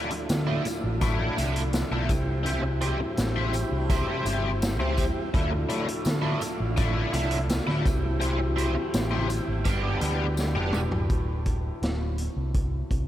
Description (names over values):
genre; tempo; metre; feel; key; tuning
psychedelic rock; 83 BPM; 4/4; straight; D dorian; A4 = 443 Hz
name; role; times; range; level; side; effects
tonewheel organ; sustained chords; 0.0-11.1 s; E3 to B4; -34 LUFS; right 2 dB; slow rotary speaker
biting overdriven guitar; riff; 0.0-10.8 s; A2 to C5; -30 LUFS; left 1 dB; rotary speaker
tanpura; drone; 0.0-13.1 s; D2 to D4; -35 LUFS; left 2 dB; none
vintage drum kit; drums; 0.1-13.1 s; hi-hat, kick drum, snare drum, toms; -30 LUFS; equal; none
picked electric bass; bass; 0.3-13.1 s; D1 to D3; -28 LUFS; equal; none
tambourine; percussion; 0.3-10.9 s; none; -45 LUFS; left 5 dB; none
room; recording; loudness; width
moderate huge ambient reverb, RT60 4.7 s; dreamy mix soaked in reverb; -24 LUFS; side -12 dB against mid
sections
0.0-11.1 A section; 11.1-13.1 B section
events
drum fill 10.4-11.1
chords
0.0 Dmadd9; 2.1 C; 5.3 Dmadd9; 7.9 C; 9.7 G; 11.1 D5